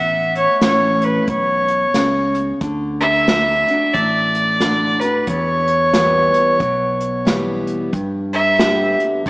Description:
honky-tonk and classic country; 90 BPM; 4/4; swing 60% on 8ths; D major; A4 = 440 Hz
clear fiddle; melody; 0.0-9.3 s; B4 to E5; -16 LUFS; equal
picked steel-string acoustic guitar; accompaniment; 0.0-9.3 s; E2 to G4; -21 LUFS; equal
fingered electric bass; bass; 0.0-9.3 s; A1 to G2; -26 LUFS; equal
unplugged drum kit; drums; 0.4-9.3 s; hi-hat, kick drum, snare drum; -21 LUFS; equal
wet plate reverb, RT60 2.2 s; heard from further back in the room, small speaker sound; -14 LUFS; side -23 dB against mid
0.0-9.3 A section
0.0 A; 2.6 D; 5.3 Em; 7.9 G

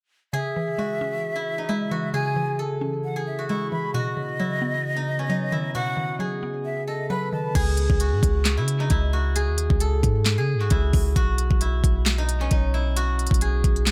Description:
hip hop, trap; 133 BPM; 4/4; half-time; C# minor; A4 = 438 Hz
steel-string zither; melody; 0.3-13.9 s; C#4 to B4; -31 LUFS; equal; analog delay
breathy jazz flute; second line; 0.3-7.5 s; D#5 to C#6; -32 LUFS; equal; analog delay
mallet-like synth pluck; accompaniment; 0.3-7.6 s; B2 to C#4; -32 LUFS; equal; chorus, phaser, analog delay
glassy FM pad; sustained chords; 0.3-7.5 s; C#3 to D#5; -35 LUFS; equal; ensemble chorus, built-in reverb
warm 808-style bass; bass; 7.6-13.9 s; B1 to C#3; -24 LUFS; equal
trap drum kit; drums; 7.6-13.9 s; crash cymbal, handclaps, hi-hat, kick drum, snare drum; -26 LUFS; equal; overdrive
digital ambience; echo-heavy mix; -24 LUFS; mono
0.3-7.6 A section; 7.6-13.9 B section
0.3 C#m; 3.9 Badd9; 7.6 C#5; 11.2 B

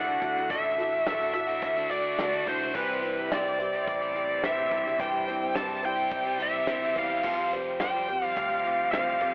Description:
folk rock and heartland rock; 107 BPM; 4/4; straight; A4 = 437 Hz
bluesy overdriven lead guitar; melody; 0.0-9.3 s; B4 to A5; -30 LUFS; equal; distortion
picked twelve-string acoustic guitar; accompaniment; 0.0-9.3 s; C3 to C5; -37 LUFS; equal; subtle chorus
tonewheel organ; sustained chords; 0.0-9.3 s; G3 to D5; -42 LUFS; equal
overdriven electric guitar; riff; 0.0-9.3 s; C3 to G4; -37 LUFS; equal; phaser
picked electric bass; bass; 0.0-9.3 s; A1 to G2; -47 LUFS; equal
natural country drum kit; drums; 0.1-9.3 s; crash cymbal, hi-hat, kick drum, snare drum; -39 LUFS; equal
tube shaker; percussion; 0.2-9.3 s; -69 LUFS; equal
moderate spring reverb, RT60 2.6 s; cassette tape, telephone sound; -28 LUFS; mono
0.0-9.3 A section
0.0 Dadd9; 2.7 C; 7.2 Fsus2

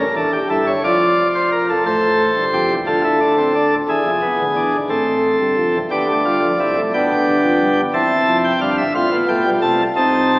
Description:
classical, baroque-style 4-part fugue for pipe organ; 59 BPM (dotted quarters); 6/8; straight; D minor; A4 = 440 Hz
chamber organ, principal chorus; solo; 0.0-10.4 s; D1 to A5; -14 LUFS; equal
wet concert hall reverb, RT60 1.9 s; heard from further back in the room, AM radio sound; -14 LUFS; side -24 dB against mid
0.0-5.9 A section; 5.9-10.4 B section
0.0 A; 0.8 Dm/F; 1.9 Am; 2.9 Dm; 3.9 E; 4.9 Am; 5.9 Dm; 6.9 G; 7.9 C/E; 8.9 F/A

